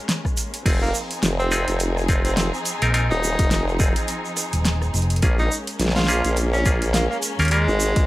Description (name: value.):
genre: glitch hop.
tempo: 105 BPM.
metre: 4/4.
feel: swing 57% on 16ths.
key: F minor.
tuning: A4 = 440 Hz.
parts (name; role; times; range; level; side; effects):
warm studio string section; sustained chords; 0.0-8.1 s; F3 to Ab4; -30 LUFS; left 1 dB; sidechain pumping.
bright clav; stabs; 0.0-7.7 s; Bb3 to Bb4; -27 LUFS; equal; sidechain pumping, tape echo.
pop drum kit; drums; 0.1-8.1 s; crash cymbal, hi-hat, rim click, snare drum; -25 LUFS; equal; none.
egg shaker; percussion; 0.1-8.1 s; none; -31 LUFS; right 3 dB; none.
electronic kick drum; drums; 0.2-8.1 s; none; -21 LUFS; equal; none.
formant-sweep wobble bass; bass; 0.7-8.1 s; Eb1 to Bb1; -22 LUFS; equal; chorus.
bright tenor saxophone; melody; 0.8-8.1 s; Ab3 to F4; -27 LUFS; equal; tape echo.
hollow-body short-scale fingered electric bass; bass; 2.8-7.7 s; Eb1 to Eb2; -20 LUFS; equal; none.
room: little or no reverb.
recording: dry, gritty hardware recording.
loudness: -18 LUFS.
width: side -17 dB against mid.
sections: 0.0-8.1 A section.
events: none.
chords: 0.0 Bbm7; 0.7 Fm7; 5.2 Bbm7.